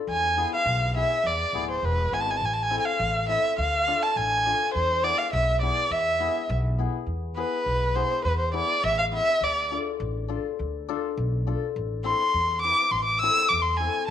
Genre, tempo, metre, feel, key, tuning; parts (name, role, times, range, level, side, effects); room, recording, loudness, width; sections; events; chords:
klezmer; 103 BPM; 2/4; straight; E phrygian dominant; A4 = 438 Hz
dark violin; melody; 0.1-9.7, 12.0-14.1 s; B4 to E6; -23 LUFS; equal; slapback echo
upright bass; bass; 0.1-14.1 s; D1 to E2; -29 LUFS; equal
hammered dulcimer; accompaniment; 0.4-14.0 s; B3 to B4; -32 LUFS; left 12 dB
light reverb, small room ambience; 1960s-style stereo; -22 LUFS; side -10 dB against mid
0.0-7.1 A section; 7.1-14.1 B section
violin solo 7.1-14.1
0.1 E; 2.4 Am; 3.6 Dm; 4.7 E; 9.4 Dm; 11.8 Am